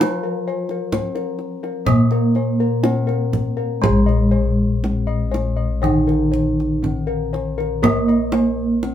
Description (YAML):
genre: Javanese gamelan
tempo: 60-66 BPM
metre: 4/4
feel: straight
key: Bb slendro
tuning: A4 = 441 Hz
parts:
  - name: gamelan-type bronze metallophone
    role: melody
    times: 0.0-8.9 s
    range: Ab3-40c to F4+20c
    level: -22 LUFS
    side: right 4 dB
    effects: none
  - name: gamelan-type bronze metallophone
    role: accompaniment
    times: 0.0-8.9 s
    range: Eb3-20c to Bb3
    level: -24 LUFS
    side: left 2 dB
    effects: none
  - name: gamelan-type bossed gongs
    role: arpeggios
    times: 0.0-8.6 s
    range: Bb4 to Eb5-20c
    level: -26 LUFS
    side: left 6 dB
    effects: none
  - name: gamelan-type bossed gongs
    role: bass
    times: 0.0-8.9 s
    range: Bb1 to Bb4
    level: -21 LUFS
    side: left 2 dB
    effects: none
  - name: kendang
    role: percussion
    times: 0.0-8.9 s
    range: none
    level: -23 LUFS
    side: right 3 dB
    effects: none
room: moderate studio reverb, RT60 0.5 s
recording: band playing live in one room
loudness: -17 LUFS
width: side -10 dB against mid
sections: 0.0-3.8 A section; 3.8-8.9 B section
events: none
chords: none